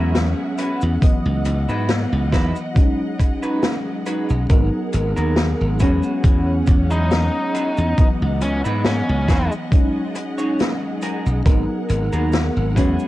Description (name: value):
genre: vaporwave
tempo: 69 BPM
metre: 4/4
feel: swing 53% on 16ths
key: B major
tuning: A4 = 440 Hz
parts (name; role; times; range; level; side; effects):
- mellow FM electric piano; accompaniment; 0.0-13.1 s; E3 to D#5; -23 LUFS; equal; ensemble chorus, analog delay
- rich studio string section; sustained chords; 0.0-13.1 s; E3 to F#5; -32 LUFS; equal; none
- electric guitar at the edge of break-up; riff; 0.0-13.1 s; B3 to C#5; -30 LUFS; right 2 dB; lush chorus, analog delay
- glassy slap bass; bass; 0.0-13.0 s; G#1 to G#2; -20 LUFS; equal; none
- open jazz drum kit; drums; 0.1-13.1 s; cabasa, hi-hat, snare drum; -25 LUFS; left 1 dB; vintage 12-bit sampler grit
- electronic kick drum; drums; 1.0-12.9 s; none; -15 LUFS; equal; vintage 12-bit sampler grit
- biting lead guitar; melody; 6.9-9.5 s; C#4 to D#4; -26 LUFS; left 1 dB; overdrive, tape echo
room: light reverb, studio reverb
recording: dark, warm production, cassette tape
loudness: -17 LUFS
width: side -16 dB against mid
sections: 0.0-13.1 A section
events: none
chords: 0.0 E69; 1.0 C#m11; 2.8 B6; 4.5 G#m9; 5.8 E69; 8.0 C#m11; 9.7 B6 (rootless); 11.5 G#m9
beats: 0.15 | 1.02 1.89 2.76 3.63 | 4.50 5.37 6.24 7.11 | 7.98 8.85 9.72 10.59 | 11.46 12.33